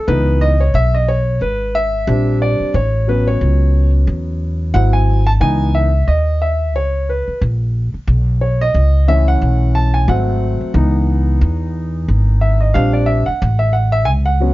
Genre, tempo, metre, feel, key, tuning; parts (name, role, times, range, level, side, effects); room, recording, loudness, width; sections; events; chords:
hip hop; 90 BPM; 4/4; swing 58% on 16ths; C# minor; A4 = 435 Hz
dark baby grand piano; accompaniment; 0.0-14.5 s; E3 to A5; -18 LUFS; equal
upright bass; bass; 0.1-14.5 s; G#1 to E2; -14 LUFS; equal
little or no reverb; dark, warm production, nothing above 7.5 kHz; -13 LUFS; side -17 dB against mid
0.0-14.5 A section
grand piano solo 0.0-14.5
0.1 C#m9; 2.1 A#6; 2.7 A6; 4.7 G#aug7; 5.4 C#m9; 8.1 B9sus4; 10.1 G#7b9; 10.7 C#m9; 12.7 A#6; 13.4 A6